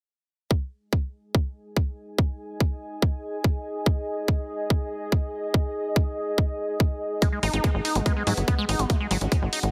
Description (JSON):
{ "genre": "psychedelic trance", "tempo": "143 BPM", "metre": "4/4", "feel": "straight", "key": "G# minor", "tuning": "A4 = 440 Hz", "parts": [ { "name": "electronic kick drum", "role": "drums", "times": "0.5-9.4 s", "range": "none", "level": "-25 LUFS", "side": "equal", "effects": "none" }, { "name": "deep dark ambient pad", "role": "texture", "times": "2.1-9.7 s", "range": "G#4 to G#5", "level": "-35 LUFS", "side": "equal", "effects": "chorus, built-in reverb, sidechain pumping" }, { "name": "liquid acid bass", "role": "riff", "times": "7.2-9.6 s", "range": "F#3 to D#4", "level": "-31 LUFS", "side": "equal", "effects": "phaser, sidechain pumping, dub echo" }, { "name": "electronic hi-hat", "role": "drums", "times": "7.2-9.7 s", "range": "none", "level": "-34 LUFS", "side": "equal", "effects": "none" }, { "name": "tight sequencer bass", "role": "bass", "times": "7.4-9.7 s", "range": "F#1 to G#2", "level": "-27 LUFS", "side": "equal", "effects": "none" }, { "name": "formant-sweep wobble bass", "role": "second line", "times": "7.5-9.4 s", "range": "B3 to C#4", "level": "-42 LUFS", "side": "equal", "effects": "none" } ], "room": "light reverb, digital ambience", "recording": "heavily compressed radio sound, multiband compression", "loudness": "-26 LUFS", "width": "mono", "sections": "0.5-9.7 A section", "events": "none", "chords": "0.5 G#5" }